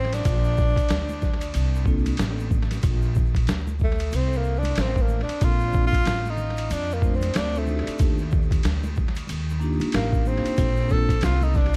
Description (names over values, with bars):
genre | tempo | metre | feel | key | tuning
hip hop, jazz-hop | 93 BPM | 4/4 | swing 60% on 16ths | Bb major | A4 = 440 Hz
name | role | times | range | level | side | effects
breathy tenor saxophone | melody | 0.0-11.7 s | A3 to A4 | -30 LUFS | equal | tape echo
upright bass | bass | 0.0-11.8 s | A1 to F2 | -27 LUFS | equal | none
boom bap sampler-style drum kit | drums | 0.1-11.8 s | hi-hat, kick drum, ride cymbal, snare drum | -27 LUFS | equal | none
egg shaker and congas | percussion | 0.1-11.8 s | none | -42 LUFS | equal | tape echo
vibraphone with soft mallets | accompaniment | 1.8-11.1 s | A3 to C5 | -33 LUFS | equal | tape echo
room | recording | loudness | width
small room reverb | echo-heavy mix, vinyl crackle | -23 LUFS | mono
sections
0.0-2.8 A section; 2.8-11.8 B section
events
tenor saxophone solo 2.8-11.8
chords
0.3 Bbmaj9; 8.0 Ebmaj9; 10.6 Bbmaj9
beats
| 0.26 0.90 1.54 2.19 | 2.83 3.48 4.13 4.77 | 5.42 6.06 6.71 7.35 | 8.00 8.64 9.29 9.93 | 10.58 11.22